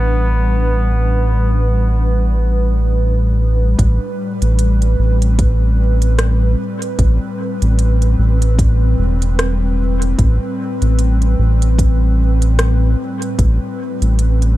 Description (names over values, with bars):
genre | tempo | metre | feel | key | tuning
ambient dub | 75 BPM | 4/4 | swing 58% on 16ths | A minor | A4 = 440 Hz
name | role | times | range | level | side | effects
brilliant trombone | melody | 0.0-3.0 s | B3 | -26 LUFS | equal | dub echo
airy breathy pad | sustained chords | 0.0-14.6 s | A2 to B4 | -21 LUFS | left 1 dB | chorus
round analog bass | bass | 0.0-14.6 s | E1 to A1 | -13 LUFS | equal | tube saturation
electronic kick drum | drums | 3.8-13.6 s | none | -16 LUFS | equal | small room reverb
organic electronic drum kit | drums | 3.8-14.6 s | hi-hat, rim click | -24 LUFS | equal | overdrive, small room reverb, dub echo
room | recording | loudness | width
digital ambience | dark, warm production | -13 LUFS | side -16 dB against mid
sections
0.0-3.8 A section; 3.8-14.6 B section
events
none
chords
0.0 A7sus2; 3.8 Am9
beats
| 0.59 1.39 2.19 2.99 | 3.79 4.59 5.39 6.19 | 6.99 7.79 8.59 9.39 | 10.19 10.99 11.79 12.59 | 13.39 14.19